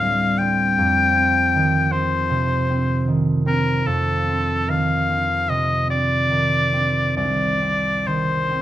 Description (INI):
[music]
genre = classical, impressionist duo for oboe and harp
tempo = 66-82 BPM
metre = 4/4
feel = rubato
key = unclear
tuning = A4 = 440 Hz
[part]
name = bright oboe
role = melody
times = 0.0-8.6 s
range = A4 to G5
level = -20 LUFS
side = left 2 dB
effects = none
[part]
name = concert harp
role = accompaniment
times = 0.0-8.6 s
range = C2 to C4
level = -21 LUFS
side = right 2 dB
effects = none
[sound]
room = moderate large studio reverb, RT60 0.8 s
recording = none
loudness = -17 LUFS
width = side -13 dB against mid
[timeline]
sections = 0.0-8.6 A section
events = none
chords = 0.0 Dm7; 0.8 Fsus2; 7.2 Cmadd9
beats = 0.04 | 0.79 1.54 2.31 3.09 | 3.86 4.69 5.49 6.31 | 7.17 8.06